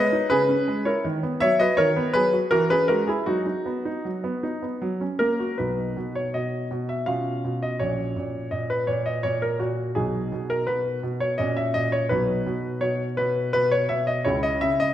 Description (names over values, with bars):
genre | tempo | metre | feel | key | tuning
classical-period piano sonatina | 83 BPM | 3/4 | rubato | B major | A4 = 441 Hz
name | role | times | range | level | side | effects
clear concert grand piano | solo | 0.0-14.9 s | A#1 to E#5 | -22 LUFS | equal | none
room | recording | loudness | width
wet recital hall reverb, RT60 1.6 s | none | -22 LUFS | side -11 dB against mid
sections
0.0-5.6 A section; 5.6-14.9 B section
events
none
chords
0.3 C#m; 1.0 B/D#; 2.5 C#m/E; 3.3 B/F#; 4.8 F#; 5.6 B; 7.1 C#7/B; 7.8 F#/A#; 10.0 B; 11.4 F#/A#; 12.1 B; 14.3 C#m